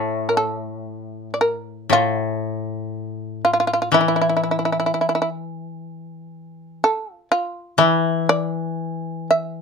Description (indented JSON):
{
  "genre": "japanese traditional, Japanese chamber music",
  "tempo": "61 BPM",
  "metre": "2/4",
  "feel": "uneven beats, rubato",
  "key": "A miyako bushi",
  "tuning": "A4 = 440 Hz",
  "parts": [
    { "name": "shamisen", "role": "melody", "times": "0.0-9.6 s", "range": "E4 to E5", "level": "-18 LUFS", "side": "right 2 dB", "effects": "none" },
    { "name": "koto", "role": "accompaniment", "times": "0.0-9.6 s", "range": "A2 to E3", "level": "-23 LUFS", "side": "left 5 dB", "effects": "none" }
  ],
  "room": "light reverb",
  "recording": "close, detailed microphones",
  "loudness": "-19 LUFS",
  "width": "side -5 dB against mid",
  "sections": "0.0-1.9 A section; 1.9-9.6 B section",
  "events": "none",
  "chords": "none"
}